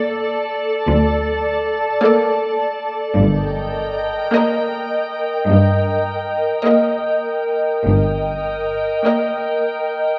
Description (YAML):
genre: cinematic, suspense film score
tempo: 50-52 BPM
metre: 4/4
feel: straight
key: unclear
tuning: A4 = 440 Hz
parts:
  - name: rich studio violin section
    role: melody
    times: 0.0-10.0 s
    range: D5 to Eb5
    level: -25 LUFS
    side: equal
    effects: none
  - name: bright studio viola section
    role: accompaniment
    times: 0.0-10.0 s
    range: Bb3 to Bb4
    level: -22 LUFS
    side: equal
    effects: none
  - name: glassy FM pad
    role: sustained chords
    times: 0.0-10.2 s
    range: A4 to A5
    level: -21 LUFS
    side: equal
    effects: ensemble chorus, built-in reverb
  - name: bright studio cello section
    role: bass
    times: 0.9-8.8 s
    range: D2 to G2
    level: -20 LUFS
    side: equal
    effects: none
  - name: warm studio double bass section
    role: bass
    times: 3.2-8.8 s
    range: G1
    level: -25 LUFS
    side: equal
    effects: none
room: moderate scoring stage reverb, RT60 1.6 s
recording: none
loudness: -18 LUFS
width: mono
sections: 0.0-10.2 A section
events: none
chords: 0.0 Gmadd9 (rootless); 3.2 Eb/G